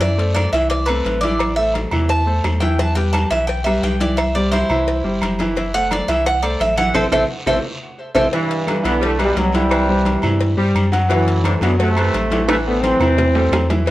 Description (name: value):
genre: latin, salsa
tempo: 173 BPM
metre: 4/4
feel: straight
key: unclear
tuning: A4 = 438 Hz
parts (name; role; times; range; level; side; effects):
- Cuban tres; melody; 0.0-8.3 s; E4 to A5; -20 LUFS; right 1 dB; none
- clear baby grand piano; accompaniment; 0.0-13.9 s; E3 to F#5; -22 LUFS; equal; none
- warm sub bass; bass; 0.0-13.9 s; F#1 to G2; -20 LUFS; equal; none
- agogo bells and timbales; percussion; 0.0-13.9 s; none; -27 LUFS; right 3 dB; none
- congas; percussion; 0.0-13.9 s; none; -28 LUFS; equal; none
- cowbell; percussion; 0.0-13.9 s; none; -28 LUFS; left 4 dB; none
- guiro; percussion; 0.0-13.9 s; none; -34 LUFS; right 1 dB; none
- claves; percussion; 0.4-13.7 s; none; -31 LUFS; right 1 dB; none
- bright trombone section; melody; 8.3-13.9 s; G2 to C4; -19 LUFS; equal; none
- clear saxophone section; second line; 8.3-13.9 s; D3 to G3; -25 LUFS; equal; none
room: light reverb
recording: worn, warbling old tape, cassette tape, warbly pitch drift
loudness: -15 LUFS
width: side -16 dB against mid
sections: 0.0-8.3 A section; 8.3-13.9 B section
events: Cuban tres solo 0.0-8.3; band accent 6.9-8.3; drum fill 7.3-8.3, 12.5-13.9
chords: 0.0 F#m7b5; 1.4 Am; 2.8 Em; 4.2 C; 5.6 F#m7b5; 6.9 Am; 8.3 Em7; 9.7 C; 11.1 F#m7b5; 12.5 Am